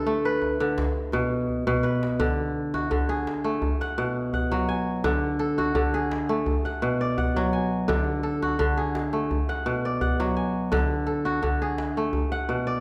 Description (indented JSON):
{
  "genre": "west african traditional, West African string and xylophone music",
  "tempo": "84 BPM",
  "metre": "4/4",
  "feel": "straight",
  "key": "D lydian",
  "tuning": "A4 = 440 Hz",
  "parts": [
    { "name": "kora", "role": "arpeggios", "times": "0.0-12.8 s", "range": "B2 to G#5", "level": "-27 LUFS", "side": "equal", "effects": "none" },
    { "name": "djembe", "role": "percussion", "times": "0.4-12.8 s", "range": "none", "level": "-32 LUFS", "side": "equal", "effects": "none" }
  ],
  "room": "moderate recital hall reverb, RT60 1.8 s",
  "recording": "none",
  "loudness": "-26 LUFS",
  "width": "mono",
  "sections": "0.0-2.2 A section; 2.2-12.8 B section",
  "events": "drum fill 1.5-2.2",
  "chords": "0.0 D5; 0.8 N.C.; 2.2 D; 3.6 B5; 5.0 D; 6.5 Bm; 7.9 D; 9.3 Bm; 10.7 D; 12.1 Bm"
}